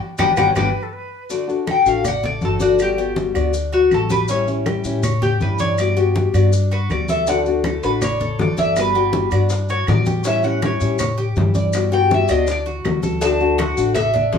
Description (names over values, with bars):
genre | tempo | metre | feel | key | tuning
latin, Cuban son and guajira | 161 BPM | 4/4 | straight | D major | A4 = 439 Hz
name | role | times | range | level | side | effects
Cuban tres | melody | 0.2-14.4 s | F#4 to A5 | -20 LUFS | left 2 dB | none
breathy bright jazz flute | second line | 0.2-1.3 s | A4 to C#5 | -31 LUFS | right 2 dB | none
nylon-string guitar | accompaniment | 0.2-14.4 s | D3 to F#4 | -22 LUFS | left 6 dB | none
Cuban tres | arpeggios | 0.2-14.4 s | C#4 to D5 | -26 LUFS | right 2 dB | none
upright bass | bass | 0.2-14.4 s | G1 to A2 | -22 LUFS | left 1 dB | none
bongos and cowbell | percussion | 0.2-0.7, 7.3-14.4 s | none | -27 LUFS | left 4 dB | none
claves | percussion | 0.2-14.1 s | none | -33 LUFS | right 3 dB | none
congas | percussion | 0.2-14.4 s | none | -25 LUFS | left 1 dB | none
maracas | percussion | 0.2-14.4 s | none | -35 LUFS | left 4 dB | none
room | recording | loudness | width
moderate studio reverb, RT60 0.8 s | none | -16 LUFS | side -7 dB against mid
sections
0.0-1.3 A section; 1.3-13.2 B section; 13.2-14.4 C section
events
band accent 0.0-1.3; Cuban tres solo 1.3-13.2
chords
0.0 Gmaj7; 1.3 D; 2.8 Gmaj7; 4.3 A7; 5.8 Gmaj7; 7.3 D; 8.8 Gmaj7; 10.3 A7; 11.7 Gmaj7; 13.2 D